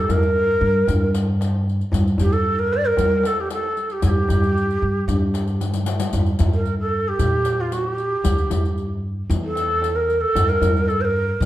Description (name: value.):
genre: Arabic maqam ensemble.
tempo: 114 BPM.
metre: 4/4.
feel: straight.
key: G minor.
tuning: A4 = 439 Hz.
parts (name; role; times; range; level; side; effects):
breathy ney; melody; 0.0-11.5 s; F4 to D5; -21 LUFS; right 1 dB; none.
upright bass; bass; 0.0-11.5 s; D2 to G3; -22 LUFS; equal; none.
darbuka; percussion; 0.1-11.5 s; none; -24 LUFS; equal; none.
riq; percussion; 0.1-11.5 s; none; -31 LUFS; left 5 dB; none.
room: moderate recital hall reverb, RT60 1.4 s.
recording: dark, warm production.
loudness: -18 LUFS.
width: side -14 dB against mid.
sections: 0.0-6.1 A section; 6.1-11.5 B section.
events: drum fill 5.6-6.1.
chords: none.